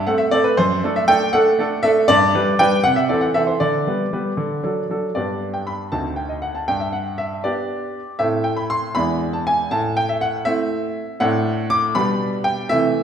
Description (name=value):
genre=classical-period piano sonatina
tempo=79 BPM (dotted quarters)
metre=6/8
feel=straight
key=G major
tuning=A4 = 440 Hz
part: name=clear baby grand piano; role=solo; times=0.0-13.0 s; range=D2 to D6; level=-17 LUFS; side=equal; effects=none
room=wet recital hall reverb, RT60 1.6 s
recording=heard from further back in the room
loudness=-17 LUFS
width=side -8 dB against mid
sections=0.0-5.2 A section; 5.2-13.0 B section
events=none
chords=0.0 Am; 0.6 D/F#; 2.1 G; 2.8 Am/C; 3.6 G/D; 4.4 D; 5.2 G; 5.9 D7b9; 6.7 G; 8.2 Am; 9.0 E7; 9.7 Am; 11.2 D7/A; 11.9 G/B